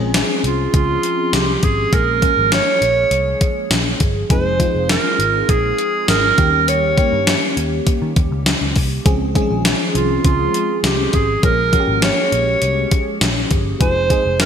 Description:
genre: 1980s-style pop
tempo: 101 BPM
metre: 4/4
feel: straight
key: unclear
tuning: A4 = 441 Hz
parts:
  - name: FM electric piano with soft pad layer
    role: accompaniment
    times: 0.0-14.5 s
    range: Eb3 to Ab4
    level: -22 LUFS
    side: left 1 dB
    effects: chorus, phaser
  - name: vintage muted picked electric bass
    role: bass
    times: 0.0-14.5 s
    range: F1 to Eb3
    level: -22 LUFS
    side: equal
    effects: none
  - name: gated 80s digital drum machine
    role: drums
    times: 0.1-14.5 s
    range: hi-hat, kick drum, snare drum, tambourine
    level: -17 LUFS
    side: left 1 dB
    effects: gated reverb, gated reverb snare, overdrive
  - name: warm clarinet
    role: melody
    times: 0.4-14.5 s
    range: F4 to Db5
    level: -18 LUFS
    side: right 3 dB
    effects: none
room: moderate lush hall reverb, RT60 2.5 s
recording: bright 1980s-style digital production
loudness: -14 LUFS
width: side -8 dB against mid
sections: 0.0-14.5 A section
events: none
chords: 0.0 Dbmaj7; 1.9 Bbm7; 4.3 Fm7; 6.4 Eb7; 9.1 Dbmaj7; 11.4 Bbm7; 13.8 Fm7

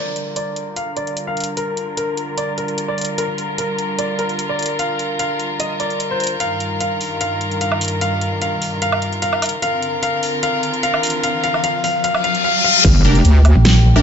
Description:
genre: heavy wobble dubstep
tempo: 149 BPM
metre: 4/4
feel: half-time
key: G minor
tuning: A4 = 437 Hz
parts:
  - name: warm baby grand piano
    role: melody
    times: 0.0-12.8 s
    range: Bb4 to F5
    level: -21 LUFS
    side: left 1 dB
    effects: low-pass filter, dub echo
  - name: warm chamber string section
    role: sustained chords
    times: 0.0-14.0 s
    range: G2 to Bb4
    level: -23 LUFS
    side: equal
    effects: sidechain pumping, low-pass filter
  - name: dubstep drum kit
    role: drums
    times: 0.2-14.0 s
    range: crash cymbal, hi-hat, snare drum, woodblock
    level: -22 LUFS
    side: right 1 dB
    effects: none
  - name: riser, reverse cymbal and impact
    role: sound effects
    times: 8.6-14.0 s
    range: none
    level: -20 LUFS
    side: left 3 dB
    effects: none
  - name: wobble bass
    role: bass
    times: 12.8-13.5 s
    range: F1 to D2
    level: -10 LUFS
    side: equal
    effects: chorus, overdrive
  - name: electronic kick drum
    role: drums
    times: 12.8-12.9 s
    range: none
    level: -14 LUFS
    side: equal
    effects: distortion
  - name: supersaw stab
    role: stabs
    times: 13.0-14.0 s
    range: D4 to Bb4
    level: -20 LUFS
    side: equal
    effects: analog chorus, dub echo
  - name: pulsing pluck wobble bass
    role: bass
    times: 13.6-14.0 s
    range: A1 to Bb1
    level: -10 LUFS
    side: equal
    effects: chorus, overdrive
room: moderate lush hall reverb, RT60 1.8 s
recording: nothing above 7.8 kHz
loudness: -16 LUFS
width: side -8 dB against mid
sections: 0.0-12.8 A section; 12.8-14.0 B section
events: build-up 0.0-12.8; filter sweep on string section 0.0-12.8; filter sweep on grand piano 0.0-12.8; riser 8.6-12.8; reverse cymbal 12.0-12.8; drop 12.8-14.0; impact 12.8-14.0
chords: 0.0 Gm7; 6.4 Ebadd9/G; 9.6 Bbadd9; 12.8 Gm

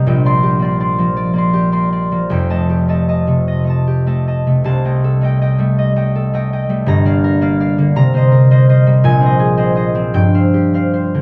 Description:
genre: classical, solo harp piece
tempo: 49-56 BPM (dotted quarters)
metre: 6/8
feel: rubato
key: C minor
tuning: A4 = 440 Hz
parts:
  - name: concert harp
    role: solo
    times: 0.0-11.2 s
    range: F1 to C6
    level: -14 LUFS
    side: equal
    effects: none
room: light reverb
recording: dark, warm production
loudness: -14 LUFS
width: mono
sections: 0.0-11.2 A section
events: none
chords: 0.1 Bb69; 2.3 F9; 4.7 Cm6; 6.9 Gm7; 8.0 Cm7; 9.0 Bb9sus4; 10.2 G7sus4

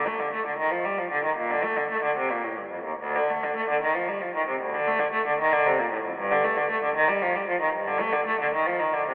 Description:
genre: classical, baroque-style suite movement for unaccompanied cello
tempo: 76 BPM (dotted quarters)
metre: 12/8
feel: rubato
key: Bb major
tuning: A4 = 444 Hz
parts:
  - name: rich cello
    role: solo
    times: 0.0-9.1 s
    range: D2 to A3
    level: -26 LUFS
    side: equal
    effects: none
room: wet church reverb, RT60 2.7 s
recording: telephone sound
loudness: -26 LUFS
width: mono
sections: 0.0-9.1 A section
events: none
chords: none

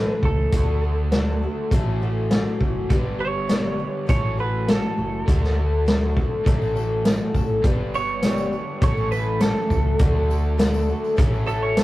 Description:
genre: folk rock and heartland rock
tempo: 101 BPM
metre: 4/4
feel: straight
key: A mixolydian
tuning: A4 = 441 Hz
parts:
  - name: twelve-string electric guitar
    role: second line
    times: 0.0-11.8 s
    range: A4 to C#5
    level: -29 LUFS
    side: right 4 dB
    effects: none
  - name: picked twelve-string acoustic guitar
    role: accompaniment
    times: 0.0-11.8 s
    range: G2 to A4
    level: -27 LUFS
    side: left 2 dB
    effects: none
  - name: overdriven electric guitar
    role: riff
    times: 0.0-11.8 s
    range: G2 to A4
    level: -31 LUFS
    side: right 1 dB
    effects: none
  - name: hollow-body short-scale fingered electric bass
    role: bass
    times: 0.0-11.8 s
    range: F#1 to D2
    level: -24 LUFS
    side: equal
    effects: none
  - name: vintage drum kit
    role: drums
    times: 0.2-11.8 s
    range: hi-hat, kick drum, snare drum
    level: -22 LUFS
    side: equal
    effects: none
  - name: accordion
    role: sustained chords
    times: 6.5-11.8 s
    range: A4 to D6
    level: -39 LUFS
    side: left 1 dB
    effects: none
  - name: tambourine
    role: percussion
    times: 6.6-11.8 s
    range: none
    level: -48 LUFS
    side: left 3 dB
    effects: none
room: moderate booth ambience, RT60 0.2 s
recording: rough rehearsal-room recording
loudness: -19 LUFS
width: side -17 dB against mid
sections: 0.0-11.8 A section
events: clean electric guitar solo 0.0-11.8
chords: 0.0 A6; 0.5 D; 1.7 A6; 2.9 G; 4.1 A6; 5.3 D; 6.5 A6; 7.6 G; 8.8 A6; 10.0 D; 11.2 A6

